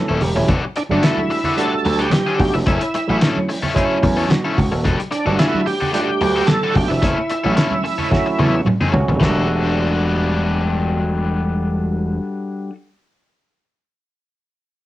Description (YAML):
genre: funk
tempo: 110 BPM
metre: 4/4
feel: straight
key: E dorian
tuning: A4 = 440 Hz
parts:
  - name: barky tine electric piano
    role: stabs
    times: 0.0-12.2 s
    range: F#3 to A4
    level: -23 LUFS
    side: right 2 dB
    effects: none
  - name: biting overdriven guitar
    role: accompaniment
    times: 0.1-12.7 s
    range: G3 to A4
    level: -23 LUFS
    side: left 3 dB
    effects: none
  - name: gritty slap bass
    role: bass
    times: 0.1-12.2 s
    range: D#1 to E2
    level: -20 LUFS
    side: equal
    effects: overdrive
  - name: cloth-damped thuddy drum kit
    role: drums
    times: 0.2-9.3 s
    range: handclaps, hi-hat, kick drum, snare drum, toms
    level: -20 LUFS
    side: left 1 dB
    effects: cassette tape
  - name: congas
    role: percussion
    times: 0.2-9.5 s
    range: none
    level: -26 LUFS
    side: right 3 dB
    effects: none
  - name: bright tonewheel organ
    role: melody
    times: 0.8-8.6 s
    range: D4 to A4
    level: -21 LUFS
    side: right 2 dB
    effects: overdrive, chorus vibrato, slow rotary speaker, cassette tape
room: moderate studio reverb, RT60 0.5 s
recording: home recording on cassette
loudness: -16 LUFS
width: side -15 dB against mid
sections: 0.5-9.2 A section; 9.2-13.6 B section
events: tine electric piano fill 0.0-0.5; drum fill 8.1-9.2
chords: 0.5 Em11; 2.7 F#m7; 4.8 Em11; 7.0 F#m7; 9.2 Em11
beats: | 0.49 1.03 1.57 2.12 | 2.66 3.21 3.75 4.30 | 4.84 5.39 5.93 6.48 | 7.03 7.57 8.12 8.66 | 9.21 9.75 10.30 10.84 | 11.39 11.93 12.48